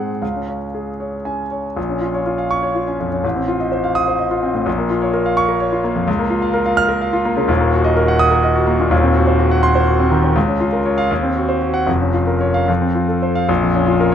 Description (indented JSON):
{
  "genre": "classical, virtuoso piano study",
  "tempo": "73-86 BPM (dotted quarters)",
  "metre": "6/8",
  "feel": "rubato",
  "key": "Bb minor",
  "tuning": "A4 = 443 Hz",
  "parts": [
    { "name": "warm concert grand piano", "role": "solo", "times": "0.0-14.1 s", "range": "Eb1 to F6", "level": "-15 LUFS", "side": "equal", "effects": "none" }
  ],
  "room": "moderate recital hall reverb, RT60 1.4 s",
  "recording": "close, detailed microphones",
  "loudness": "-15 LUFS",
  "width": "side -9 dB against mid",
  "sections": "0.0-1.8 A section; 1.8-13.5 B section",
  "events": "none",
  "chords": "0.2 Db; 1.8 Bbm; 3.2 F7/A; 4.7 Bbm; 6.1 Bbm/Db; 7.5 Ebm; 8.9 Cdim/Eb; 10.4 Bbm/Db; 11.1 Cdim/Eb; 11.9 Bbm/F; 12.7 F; 13.5 Bbm"
}